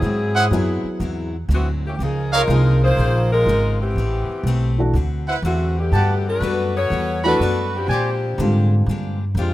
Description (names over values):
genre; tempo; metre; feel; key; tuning
jazz, big band swing; 122 BPM; 4/4; swing 67% on 8ths; unclear; A4 = 440 Hz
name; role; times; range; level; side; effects
warm saxophone section; melody; 0.0-9.5 s; D3 to Db5; -22 LUFS; left 2 dB; none
picked steel-string acoustic guitar; accompaniment; 0.0-9.5 s; Ab2 to B4; -30 LUFS; left 6 dB; none
upright bass; bass; 0.0-9.5 s; Ab1 to Bb2; -19 LUFS; equal; none
clear trumpet section; stabs; 0.4-8.1 s; Eb4 to B5; -22 LUFS; right 2 dB; none
dark upright piano; accompaniment; 0.5-9.2 s; D3 to Ab4; -24 LUFS; equal; none
room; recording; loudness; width
small room ambience; rough home demo mix; -17 LUFS; side -15 dB against mid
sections
0.0-9.5 A section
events
none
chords
0.0 Ab7alt; 2.0 Db69; 4.0 Am9; 4.9 D13; 5.9 Gmaj9; 7.9 Bb13